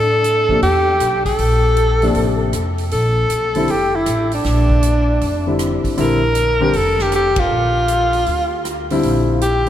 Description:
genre	modal jazz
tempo	157 BPM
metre	4/4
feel	swing 66% on 8ths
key	Bb lydian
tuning	A4 = 440 Hz
part	breathy alto saxophone	melody	0.0-9.7 s	D4 to Bb4	-17 LUFS	equal	none
part	upright bass	bass	0.0-9.7 s	F1 to A2	-19 LUFS	equal	none
part	swinging big-band drum kit	drums	0.2-9.7 s	hi-hat, kick drum, ride cymbal, rim click, snare drum	-28 LUFS	right 1 dB	none
part	warm grand piano	accompaniment	0.5-9.7 s	C3 to G4	-22 LUFS	left 2 dB	none
room	wet cathedral reverb, RT60 6.0 s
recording	in a vast, echoing space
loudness	-14 LUFS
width	side -11 dB against mid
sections	0.0-2.9 A section; 2.9-9.7 A section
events	band accent 7.3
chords	0.0 Am; 2.9 Bb6; 9.0 Am (rootless)

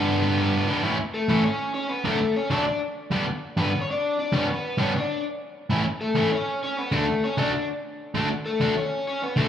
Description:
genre	punk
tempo	197 BPM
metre	4/4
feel	straight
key	G lydian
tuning	A4 = 440 Hz
part	overdriven semi-hollow guitar	melody	0.0-9.5 s	A3 to D5	-26 LUFS	left 2 dB	slapback echo
part	sludgy distorted guitar	riff	0.0-9.5 s	G2 to F#4	-24 LUFS	right 1 dB	overdrive, slapback echo
room	moderate lush hall reverb, RT60 2.5 s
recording	live gig heard through the venue's PA, club reverb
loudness	-22 LUFS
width	side -9 dB against mid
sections	0.8-9.5 A section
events	half time 0.8-9.5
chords	0.0 G; 0.8 A; 2.1 D; 3.1 G; 5.7 A; 6.9 D

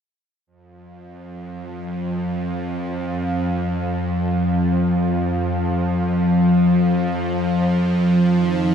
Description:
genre	dark ambient drone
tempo	free time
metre	none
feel	none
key	unclear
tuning	A4 = 444 Hz
part	bowed-like drone	drone	1.3-8.7 s	F2 to F3	-18 LUFS	equal	built-in reverb
part	deep dark ambient pad	sustained chords	8.5-8.7 s	Eb4 to Bb4	-25 LUFS	right 2 dB	chorus, built-in reverb
room	wet cathedral reverb, RT60 6.4 s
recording	none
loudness	-18 LUFS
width	side -7 dB against mid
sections	0.5-8.7 A section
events	none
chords	none

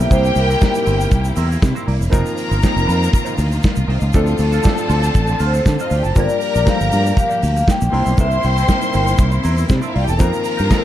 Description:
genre	disco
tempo	119 BPM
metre	4/4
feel	straight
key	unclear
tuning	A4 = 440 Hz
part	vibraphone with medium mallets	melody	0.0-1.1, 5.5-9.2 s	Bb4 to G5	-20 LUFS	left 1 dB	none
part	rich symphonic violin section	second line	0.0-10.8 s	C4 to C6	-23 LUFS	left 1 dB	none
part	clear concert grand piano	accompaniment	0.0-10.8 s	F3 to C5	-25 LUFS	left 1 dB	none
part	semi-hollow electric guitar	accompaniment	0.0-10.8 s	Eb4 to D5	-29 LUFS	right 4 dB	wah, wide subtle chorus
part	clear studio string section	sustained chords	0.0-10.8 s	C3 to G4	-28 LUFS	left 1 dB	none
part	fingered electric bass	bass	0.0-10.7 s	E1 to D3	-17 LUFS	equal	none
part	tube shaker	percussion	0.0-10.8 s	none	-37 LUFS	right 6 dB	none
part	modern studio drum kit	drums	0.1-10.8 s	hi-hat, kick drum, snare drum	-19 LUFS	equal	none
room	light reverb, small room ambience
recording	dark, warm production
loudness	-14 LUFS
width	side -12 dB against mid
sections	0.0-10.8 A section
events	none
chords	0.0 C7; 2.1 F7sus4; 4.1 Dm7; 6.2 Gm7; 7.9 C7; 10.2 F7sus4

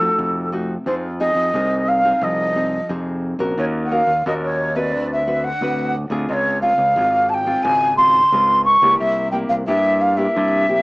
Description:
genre	samba and choro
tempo	88 BPM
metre	4/4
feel	straight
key	F minor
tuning	A4 = 440 Hz
part	breathy mellow wooden flute	melody	0.0-10.8 s	A4 to Db6	-16 LUFS	equal	none
part	nylon-string guitar	accompaniment	0.0-10.8 s	G2 to B4	-25 LUFS	left 1 dB	none
part	growling fingered electric bass	bass	0.0-10.8 s	Ab1 to G2	-25 LUFS	equal	overdrive
room	moderate studio reverb, RT60 0.6 s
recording	small speaker sound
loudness	-16 LUFS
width	side -24 dB against mid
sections	0.9-10.8 A section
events	none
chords	0.0 F7b9; 0.9 Fm7; 3.6 Ebm7; 4.9 D6; 6.3 Dbmaj7; 9.0 C7

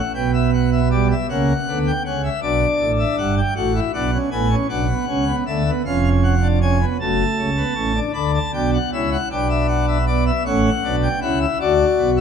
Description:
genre	classical, baroque-style 3-part fugue for pipe organ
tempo	52 BPM (dotted quarters)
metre	6/8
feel	straight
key	D major from 8.2 s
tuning	A4 = 442 Hz
part	pipe organ, plenum	solo	0.0-12.2 s	E#1 to B5	-17 LUFS	equal	none
room	moderate concert hall reverb, RT60 1.8 s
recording	none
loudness	-17 LUFS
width	side -7 dB against mid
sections	0.0-8.2 A section; 8.2-12.2 B section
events	none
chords	0.1 Em/B; 1.3 F#7/C#; 2.4 Bm; 3.6 F#m/A; 4.7 Bm; 5.8 C#7/E#; 7.0 F#m; 8.2 D; 9.3 G/B; 10.5 A7; 11.6 D

